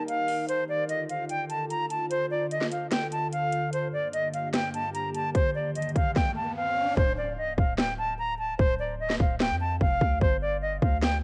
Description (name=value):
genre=hip hop, trap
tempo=148 BPM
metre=4/4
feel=half-time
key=D phrygian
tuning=A4 = 442 Hz
part: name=bright concert flute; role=melody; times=0.0-11.2 s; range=C5 to Bb5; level=-30 LUFS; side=equal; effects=cassette tape, analog delay
part: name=glassy FM pad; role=sustained chords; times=0.0-6.2 s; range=D2 to Bb4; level=-37 LUFS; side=equal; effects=ensemble chorus, built-in reverb, phaser
part: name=trap drum kit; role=drums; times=0.1-11.1 s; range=hi-hat, kick drum, snare drum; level=-29 LUFS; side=equal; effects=vintage 12-bit sampler grit, cassette tape
part: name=riser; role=sound effects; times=5.8-7.0 s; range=none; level=-42 LUFS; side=equal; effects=none
part: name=warm 808-style bass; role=bass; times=7.0-11.2 s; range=C1 to F2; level=-34 LUFS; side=equal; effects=none
room=light reverb, digital ambience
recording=home recording on cassette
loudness=-28 LUFS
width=mono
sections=0.5-7.0 A section; 7.0-11.2 B section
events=break 0.0-0.5; riser 5.8-7.0; hi-hats muted 7.0-11.2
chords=0.5 Dm; 3.7 Gm; 5.3 Eb; 7.0 Dm; 10.2 G5